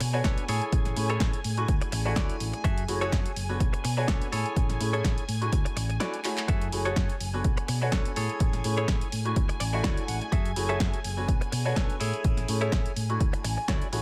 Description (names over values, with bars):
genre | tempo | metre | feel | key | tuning
filtered disco house | 125 BPM | 4/4 | swing 54% on 16ths | unclear | A4 = 440 Hz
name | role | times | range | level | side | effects
clear grand piano | accompaniment | 0.0-14.0 s | A3 to C#6 | -36 LUFS | equal | phaser, sidechain pumping
string machine, full ensemble | sustained chords | 0.0-14.0 s | G#5 | -41 LUFS | equal | phaser, ensemble chorus, vintage 12-bit sampler grit, sidechain pumping
direct-recorded clean electric guitar | riff | 0.0-13.9 s | D4 to F#5 | -37 LUFS | equal | sidechain pumping
hollow-body short-scale fingered electric bass | bass | 0.0-14.0 s | F#1 to B2 | -33 LUFS | equal | sidechain pumping
punchy analog drum machine | drums | 0.0-14.0 s | handclaps, hi-hat, snare drum | -37 LUFS | equal | sidechain pumping on hats
electronic kick drum | drums | 0.2-13.8 s | none | -30 LUFS | equal | none
room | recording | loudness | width
light reverb | none | -28 LUFS | mono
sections
0.0-14.0 A section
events
drum fill 6.2; clean electric guitar fill 9.4-10.3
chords
0.5 Amaj7; 2.6 F#m9; 3.6 Bm9; 4.3 Amaj7; 6.5 F#m9; 7.4 Bm9; 8.2 Amaj7; 10.3 F#m9; 11.3 Bm9; 12.0 Amaj7